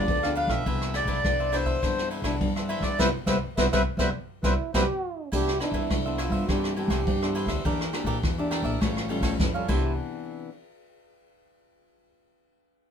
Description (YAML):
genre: samba and choro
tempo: 103 BPM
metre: 4/4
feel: straight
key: C major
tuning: A4 = 439 Hz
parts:
  - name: accordion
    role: melody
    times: 0.0-4.8 s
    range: B4 to F5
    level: -27 LUFS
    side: left 1 dB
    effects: none
  - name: cavaquinho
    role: accompaniment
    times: 0.0-9.9 s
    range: D4 to F5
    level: -35 LUFS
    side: right 3 dB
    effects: none
  - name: nylon-string guitar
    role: accompaniment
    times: 0.0-10.5 s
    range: G2 to G4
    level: -32 LUFS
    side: left 2 dB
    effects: none
  - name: upright bass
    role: bass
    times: 0.0-10.0 s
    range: A1 to Bb2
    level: -30 LUFS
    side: equal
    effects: none
  - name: jazz brush drum kit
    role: drums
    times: 0.1-9.8 s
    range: crash cymbal, kick drum, ride cymbal, rim click, snare drum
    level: -29 LUFS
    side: equal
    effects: none
  - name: breathy trombone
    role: second line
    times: 4.4-10.0 s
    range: E4 to G4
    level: -31 LUFS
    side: right 4 dB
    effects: none
room: light reverb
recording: minimal, uncompressed stereo recording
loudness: -24 LUFS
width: side -7 dB against mid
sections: 0.0-5.3 A section; 5.3-10.0 B section; 10.0-12.3 C section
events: band accent 3.0-5.3; drum fill 9.4-10.0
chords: 0.0 G7; 0.7 Cmaj9; 7.7 Em7b5; 8.8 Aaug7; 9.7 Cmaj9; 10.0 N.C.